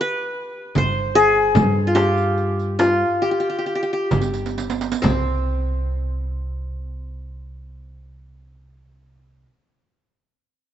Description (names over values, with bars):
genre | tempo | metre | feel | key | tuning
Arabic maqam ensemble | 63-78 BPM | 4/4 | straight | unclear | A4 = 440 Hz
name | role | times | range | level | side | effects
qanun | melody | 0.0-9.4 s | C4 to C5 | -20 LUFS | left 1 dB | none
upright bass | bass | 0.8-9.4 s | G1 to G2 | -24 LUFS | equal | none
darbuka | percussion | 0.8-5.5 s | none | -27 LUFS | right 4 dB | none
frame drum | percussion | 0.8-5.5 s | none | -27 LUFS | left 4 dB | none
riq | percussion | 0.8-5.5 s | none | -28 LUFS | right 9 dB | none
room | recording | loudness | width
moderate lush hall reverb, RT60 2.6 s | rough home demo mix, nothing above 7.9 kHz | -18 LUFS | side -10 dB against mid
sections
0.0-5.0 A section; 5.0-8.8 B section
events
slowing down 0.0-5.0; drum fill 4.1-5.0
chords
none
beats
0.76 | 1.56 2.38 3.23 4.12 | 5.04 5.99 6.94 7.88